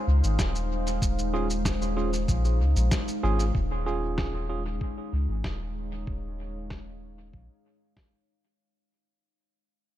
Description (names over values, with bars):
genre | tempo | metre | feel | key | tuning
ambient dub | 95 BPM | 4/4 | straight | unclear | A4 = 440 Hz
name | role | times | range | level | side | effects
deep dark ambient pad | sustained chords | 0.0-8.6 s | Ab3 to F5 | -34 LUFS | left 1 dB | chorus, built-in reverb
soft dub sub bass | bass | 0.1-7.5 s | Eb1 to Db2 | -27 LUFS | equal | none
electronic shaker and snare drum | drums | 0.2-8.1 s | none | -35 LUFS | equal | low-pass filter on snare, low-pass filter on perc, low-pass filter on room, dub echo
electronic kick drum | drums | 0.4-8.1 s | none | -30 LUFS | equal | none
tine electric piano | stabs | 1.3-4.6 s | Db4 to Ab4 | -34 LUFS | right 4 dB | vintage 12-bit sampler grit, dub echo
room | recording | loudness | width
digital ambience | none | -25 LUFS | side -13 dB against mid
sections
0.0-3.5 A section; 3.5-8.6 B section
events
fade-out 3.5-8.6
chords
0.0 Eb9sus4